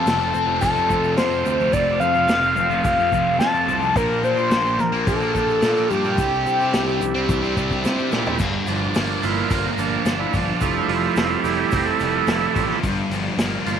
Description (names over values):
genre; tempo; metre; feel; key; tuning
psychedelic rock; 108 BPM; 4/4; straight; G dorian; A4 = 438 Hz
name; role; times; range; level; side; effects
overdriven synth lead; melody; 0.0-7.8 s; G4 to A5; -20 LUFS; left 2 dB; chorus, tape echo
overdriven combo organ; sustained chords; 0.0-13.8 s; G3 to A4; -26 LUFS; right 12 dB; none
thick fuzz guitar; riff; 0.0-13.8 s; F2 to F4; -24 LUFS; equal; distortion, phaser
fuzz picked electric bass; bass; 0.0-13.8 s; F1 to C3; -27 LUFS; equal; overdrive
vintage drum kit; drums; 0.1-13.8 s; crash cymbal, hi-hat, kick drum, snare drum, toms; -26 LUFS; left 1 dB; none
tube shaker; percussion; 0.1-13.8 s; none; -44 LUFS; left 12 dB; none
room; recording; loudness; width
little or no reverb; 1960s-style stereo with parts hard left and right; -18 LUFS; side -8 dB against mid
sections
0.0-8.4 A section; 8.4-13.8 B section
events
drum fill 7.3-8.4; transistor combo organ solo 8.4-13.8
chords
0.0 F; 4.0 Bb6; 6.2 Cadd9; 8.4 Gm7; 10.6 Fmaj7; 12.8 Gm7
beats
0.07 0.62 1.18 | 1.74 2.29 2.85 3.40 | 3.96 4.52 5.07 5.63 | 6.18 6.74 7.29 7.85 | 8.40 8.96 9.51 10.06 | 10.62 11.17 11.73 12.28 | 12.84 13.39